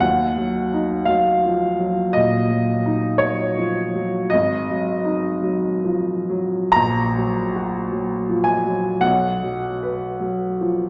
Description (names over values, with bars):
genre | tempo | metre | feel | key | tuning
classical, romantic nocturne for solo piano | 43-57 BPM | 4/4 | rubato | unclear | A4 = 440 Hz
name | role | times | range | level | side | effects
warm baby grand piano | solo | 0.0-10.9 s | G#1 to A#5 | -21 LUFS | equal | none
room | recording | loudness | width
wet concert hall reverb, RT60 2.1 s | none | -21 LUFS | mono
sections
0.0-10.9 A section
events
none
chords
0.0 D#m; 4.3 G#5; 6.7 F#/A#; 9.0 B5